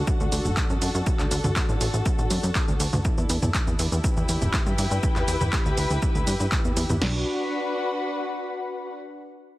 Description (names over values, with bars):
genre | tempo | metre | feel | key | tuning
melodic techno | 121 BPM | 4/4 | straight | B minor | A4 = 440 Hz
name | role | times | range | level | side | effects
plucky analog bass | bass | 0.0-7.2 s | D1 to G2 | -25 LUFS | equal | sidechain pumping
dark studio string section | texture | 0.0-9.0 s | D4 to G5 | -29 LUFS | left 1 dB | sidechain pumping
punchy analog drum machine | drums | 0.1-7.1 s | crash cymbal, kick drum, snare drum | -26 LUFS | equal | studio reverb
punchy analog drum machine | drums | 0.1-7.0 s | handclaps, hi-hat, shaker, toms | -29 LUFS | right 1 dB | sidechain pumping on perc, studio reverb, sidechain pumping on hats, sidechain pumping on toms
room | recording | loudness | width
light reverb | heavily compressed radio sound, multiband compression | -22 LUFS | side -17 dB against mid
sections
0.0-7.0 A section; 7.0-9.0 B section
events
none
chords
0.0 D; 3.0 Em; 7.0 Bm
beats
0.07 0.57 | 1.06 1.56 2.06 2.55 | 3.05 3.54 4.04 4.54 | 5.03 5.53 6.02 6.52 | 7.01 7.51 8.01 8.50